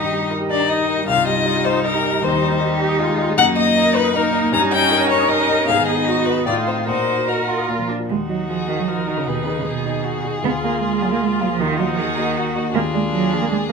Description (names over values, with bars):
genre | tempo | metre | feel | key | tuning
quick classical-period movement for piano quintet | 156 BPM | 3/4 | rubato | Eb minor from 3.4 s | A4 = 440 Hz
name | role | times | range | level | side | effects
rich violin | melody | 0.0-13.7 s | F4 to Bb5 | -21 LUFS | left 6 dB | none
rich cello | second line | 0.0-13.7 s | Cb3 to Bb4 | -23 LUFS | right 7 dB | none
rich violin | second line | 0.0-13.7 s | D4 to Ab4 | -26 LUFS | left 5 dB | none
rich viola | accompaniment | 0.0-13.7 s | G3 to Gb4 | -26 LUFS | right 4 dB | none
warm grand piano | accompaniment | 0.0-13.7 s | C2 to Eb6 | -23 LUFS | left 1 dB | none
room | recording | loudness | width
moderate large studio reverb, RT60 0.9 s | minimal, uncompressed stereo recording | -16 LUFS | side -5 dB against mid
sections
0.0-8.1 A section; 8.1-13.7 B section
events
none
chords
0.0 Eb/G; 1.1 Cm; 2.2 Cm/Eb; 3.4 Ebm/Gb; 4.5 Eb7/G; 5.7 Abm; 6.5 F7/A; 6.9 Ebm/Bb; 7.7 Bb; 8.1 Ebm; 9.3 Abm/Eb; 10.4 Bb7/D; 11.6 Ebm; 12.7 Bb7/Eb